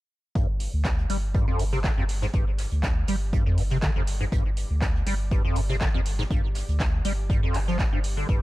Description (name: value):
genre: acid house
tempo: 121 BPM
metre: 4/4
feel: swing 53% on 16ths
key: unclear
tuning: A4 = 441 Hz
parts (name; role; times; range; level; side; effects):
- liquid acid bass; riff; 0.4-8.4 s; F2 to G3; -28 LUFS; equal; phaser, overdrive, ensemble chorus, sidechain pumping, digital delay
- warm sub bass; bass; 0.4-8.4 s; G1 to D2; -28 LUFS; equal; sidechain pumping
- electronic kick drum; drums; 0.4-8.4 s; none; -26 LUFS; equal; none
- vintage brush drum kit; drums; 0.4-8.4 s; hi-hat, snare drum; -44 LUFS; right 2 dB; high-pass filter on hats, high-pass filter on snare, high-pass filter on room
- airy breathy pad; texture; 0.4-8.4 s; G3 to D6; -48 LUFS; equal; none
- punchy analog drum machine; drums; 0.6-8.1 s; handclaps, hi-hat; -35 LUFS; right 1 dB; none
room: little or no reverb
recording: dark, warm production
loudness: -23 LUFS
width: side -18 dB against mid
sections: 0.4-8.4 A section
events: none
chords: 0.4 G5